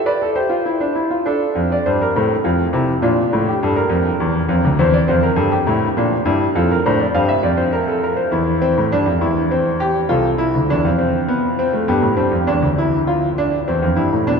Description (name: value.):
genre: classical, baroque-style 4-part fugue for grand piano.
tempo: 68 BPM (dotted quarters).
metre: 12/8.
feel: straight.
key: F major.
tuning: A4 = 437 Hz.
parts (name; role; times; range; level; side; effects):
clear concert grand piano; solo; 0.0-14.4 s; C2 to F5; -15 LUFS; equal; none.
room: wet cathedral reverb, RT60 4.8 s.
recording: in a vast, echoing space.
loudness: -15 LUFS.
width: side -5 dB against mid.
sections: 0.0-14.4 A section.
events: none.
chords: 0.0 G7; 1.3 F; 3.0 Gm7; 4.8 C7/E; 6.5 F; 8.3 C/E; 10.1 Dm7/C; 11.9 Bdim/D.